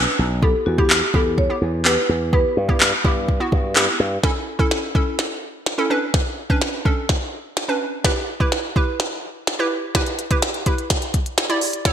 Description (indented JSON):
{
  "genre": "dance-pop",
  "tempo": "126 BPM",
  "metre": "4/4",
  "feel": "straight",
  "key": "unclear",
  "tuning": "A4 = 440 Hz",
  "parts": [
    { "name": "hollow square pluck", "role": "accompaniment", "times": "0.0-11.9 s", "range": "B3 to D5", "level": "-24 LUFS", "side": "right 2 dB", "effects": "chorus, sidechain pumping" },
    { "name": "slap bass with an envelope filter", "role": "bass", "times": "0.0-4.2 s", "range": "B1 to G2", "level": "-22 LUFS", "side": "equal", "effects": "sidechain pumping" },
    { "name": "marimba with medium mallets", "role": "melody", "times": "0.4-3.7 s", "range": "F#4 to C#5", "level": "-23 LUFS", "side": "equal", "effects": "digital delay" },
    { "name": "glitchy drum kit", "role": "drums", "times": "0.4-11.9 s", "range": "handclaps, hi-hat, kick drum, snare drum", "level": "-19 LUFS", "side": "equal", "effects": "gated reverb" }
  ],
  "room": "moderate lush hall reverb, RT60 1.6 s",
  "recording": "bright 1980s-style digital production",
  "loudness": "-18 LUFS",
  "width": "side -9 dB against mid",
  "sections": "0.0-4.2 A section; 4.2-11.9 B section",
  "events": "build-up 4.2-11.9; drum fill 4.2-11.9",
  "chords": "0.4 Em; 2.3 G6; 4.2 A; 5.9 Bmadd9; 8.0 Em; 10.0 G6",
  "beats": "| 0.43 0.90 1.38 1.86 | 2.33 2.81 3.28 3.76 | 4.24 4.71 5.19 5.67 | 6.14 6.62 7.09 7.57 | 8.05 8.52 9.00 9.47 | 9.95 10.43 10.90 11.38 | 11.86"
}